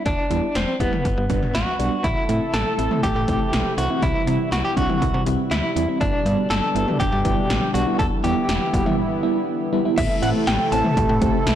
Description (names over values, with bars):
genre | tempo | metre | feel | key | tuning
synth-pop | 121 BPM | 4/4 | straight | A dorian | A4 = 439 Hz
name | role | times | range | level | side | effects
direct-recorded clean electric guitar | melody | 0.1-11.6 s | B3 to A5 | -24 LUFS | equal | tremolo, ping-pong delay
slap-like FM bass | bass | 0.1-11.6 s | E1 to C3 | -25 LUFS | equal | none
80s electronic pad drums | drums | 0.1-11.6 s | cowbell, crash cymbal, hi-hat, kick drum, snare drum, toms | -24 LUFS | equal | gated reverb on snare and toms, overdrive
FM electric piano with auto-pan | accompaniment | 0.3-11.4 s | G3 to G4 | -25 LUFS | right 2 dB | phaser
warm analog pad | sustained chords | 2.0-11.6 s | B2 to A4 | -26 LUFS | equal | chorus
room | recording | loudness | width
moderate recital hall reverb, RT60 1.4 s, digital ambience | blown-out, overdriven recording, overdrive | -18 LUFS | side -10 dB against mid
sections
0.0-2.0 A section; 2.0-10.0 B section; 10.0-11.6 C section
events
none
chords
0.1 Em7; 1.1 G; 2.0 Am; 4.0 C; 6.0 G; 8.0 Em7; 10.0 Am